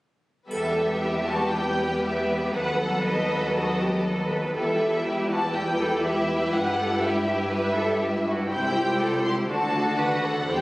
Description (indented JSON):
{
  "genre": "classical, dramatic, fast romantic movement for symphony orchestra",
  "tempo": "121 BPM",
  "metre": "4/4",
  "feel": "rubato",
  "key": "E minor",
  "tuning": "A4 = 439 Hz",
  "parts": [
    { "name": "warm symphonic violin section", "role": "melody", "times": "0.5-10.6 s", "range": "D#5 to C6", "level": "-29 LUFS", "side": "left 1 dB", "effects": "none" },
    { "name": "rich studio violin section", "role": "second line", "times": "0.5-10.6 s", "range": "E4 to C5", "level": "-29 LUFS", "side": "equal", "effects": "none" },
    { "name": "rich symphonic viola section", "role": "accompaniment", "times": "0.5-10.6 s", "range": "D3 to E4", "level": "-29 LUFS", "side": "equal", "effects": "none" },
    { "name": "bright symphonic double bass section", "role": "bass", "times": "0.5-10.6 s", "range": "C2 to G2", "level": "-31 LUFS", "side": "equal", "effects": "none" },
    { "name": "rich symphonic cello section", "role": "bass", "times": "0.5-10.6 s", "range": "E4 to B4", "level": "-29 LUFS", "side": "equal", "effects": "none" },
    { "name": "triangle", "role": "percussion", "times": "0.5-1.5 s", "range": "none", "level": "-48 LUFS", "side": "equal", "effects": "none" }
  ],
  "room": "wet recital hall reverb, RT60 1.7 s",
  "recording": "recorded on a phone in the room, studio reverb",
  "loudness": "-22 LUFS",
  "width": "side -19 dB against mid",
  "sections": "0.5-10.6 A section",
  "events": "none",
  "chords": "0.5 Em; 2.5 B7/D#; 4.6 Em; 6.5 Em/G; 8.5 C; 9.5 D"
}